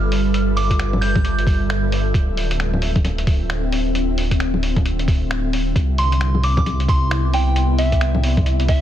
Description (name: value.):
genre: future garage.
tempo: 133 BPM.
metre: 4/4.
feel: swing 61% on 16ths.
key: D dorian.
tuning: A4 = 440 Hz.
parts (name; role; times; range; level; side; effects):
ethereal airy pad; sustained chords; 0.0-8.8 s; C3 to E5; -24 LUFS; left 1 dB; ensemble chorus, built-in reverb, sidechain pumping.
dark detuned saw bass; bass; 0.0-8.8 s; D1 to C2; -20 LUFS; equal; sidechain pumping.
lo-fi sampler-style drum kit; drums; 0.1-8.8 s; bongos, finger snaps, hi-hat; -26 LUFS; left 2 dB; studio reverb, soft clipping on snare.
soft synth bell; melody; 0.6-1.5, 6.0-8.8 s; E5 to G6; -24 LUFS; right 2 dB; chorus, analog delay.
electronic kick drum; drums; 0.7-8.8 s; none; -18 LUFS; equal; studio reverb.
room: little or no reverb.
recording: dense, heavily limited modern master.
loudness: -16 LUFS.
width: side -11 dB against mid.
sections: 0.0-8.8 A section.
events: none.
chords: 0.0 G13; 2.1 Dm9; 5.8 Cmaj9.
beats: | 0.34 0.80 1.25 1.70 | 2.15 2.60 3.05 3.50 | 3.95 4.40 4.86 5.31 | 5.76 6.21 6.66 7.11 | 7.56 8.01 8.46.